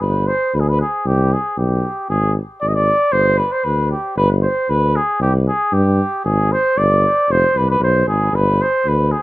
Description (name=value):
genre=balkan folk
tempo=116 BPM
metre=2/4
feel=straight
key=unclear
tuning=A4 = 440 Hz
part: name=warm flugelhorn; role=melody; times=0.0-9.2 s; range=G4 to Eb5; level=-17 LUFS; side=equal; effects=none
part: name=mellow tuba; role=bass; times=0.0-9.1 s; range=F1 to G2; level=-17 LUFS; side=equal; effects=none
room=moderate small room ambience, RT60 0.5 s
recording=rough home demo mix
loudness=-14 LUFS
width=side -18 dB against mid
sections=0.0-4.2 A section; 4.2-9.2 A section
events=none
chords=0.0 G5; 1.1 C5; 2.1 Ab5; 3.1 G5; 5.2 C5; 6.3 Abmaj7#11; 7.3 Fm; 8.3 G5